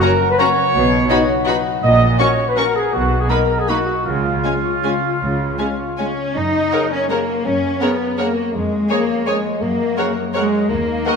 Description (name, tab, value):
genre	classical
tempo	149-179 BPM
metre	3/4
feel	rubato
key	F# major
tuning	A4 = 440 Hz
part	warm studio violin section	melody	0.0-11.1 s	F#5 to C#6	-28 LUFS	left 4 dB	none
part	mellow cor anglais	second line	0.0-11.2 s	E#4 to D#5	-24 LUFS	right 3 dB	none
part	mellow hollow flute section	second line	0.0-6.2 s	E#4 to D#5	-25 LUFS	left 2 dB	none
part	rich studio violin section	second line	0.0-11.2 s	C#4 to D#5	-27 LUFS	left 2 dB	none
part	warm studio viola section	accompaniment	0.0-11.1 s	G#3 to C#5	-26 LUFS	equal	none
part	mellow French horn section	sustained chords	0.0-11.2 s	G#3 to F#4	-24 LUFS	left 5 dB	none
part	concert harp	arpeggios	0.0-11.2 s	E#2 to D#6	-26 LUFS	left 8 dB	none
part	mellow trumpet section	stabs	0.0-6.1 s	E#4 to D#5	-20 LUFS	equal	none
part	rich studio double bass section	bass	0.7-11.0 s	A#1 to F#2	-24 LUFS	right 3 dB	none
part	warm studio cello section	bass	0.7-11.2 s	A#2 to D#4	-21 LUFS	right 2 dB	none
part	mellow bassoon	accompaniment	6.7-11.2 s	C#3 to D#3	-26 LUFS	right 2 dB	none
room	wet scoring stage reverb, RT60 1.5 s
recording	none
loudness	-15 LUFS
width	side -5 dB against mid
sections	0.0-6.4 A section; 6.4-11.2 B section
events	none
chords	0.0 F#; 0.7 B; 1.8 F#/A#; 2.9 Bmaj7; 4.1 C#; 6.4 F#; 8.5 C#/E#; 9.6 F#